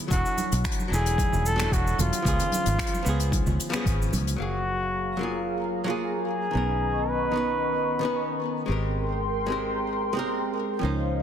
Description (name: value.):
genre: sunset chillout.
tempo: 112 BPM.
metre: 4/4.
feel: straight.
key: F# major from 4.4 s.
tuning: A4 = 439 Hz.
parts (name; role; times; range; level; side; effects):
warm flugelhorn; melody; 0.1-8.4 s; E#4 to B4; -29 LUFS; equal; ping-pong delay.
archtop guitar, miked and amplified; accompaniment; 0.1-11.2 s; D#3 to E#5; -30 LUFS; moving between left 4 dB and right 5 dB; auto-pan, ping-pong delay.
fingered electric bass; bass; 0.1-11.2 s; E1 to C#2; -28 LUFS; equal; none.
electronic kick drum; drums; 0.1-4.0 s; none; -28 LUFS; equal; none.
jazz brush drum kit; drums; 0.1-4.4 s; cabasa, finger snaps, hi-hat; -33 LUFS; left 2 dB; soft clipping on snare.
congas; percussion; 0.4-4.2 s; none; -35 LUFS; right 3 dB; none.
lush unison pad; sustained chords; 4.4-11.2 s; B3 to C#6; -30 LUFS; left 2 dB; chorus, phaser.
room: moderate plate reverb, RT60 1.9 s, studio reverb.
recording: dense, heavily limited modern master.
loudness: -24 LUFS.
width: side -9 dB against mid.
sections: 0.0-4.4 A section; 4.4-11.2 B section.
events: filter sweep on analog synth pad 4.4-11.2.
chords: 0.0 E9sus4; 2.3 C#7; 4.4 F#maj9; 6.5 Bmaj9; 8.7 G#maj9.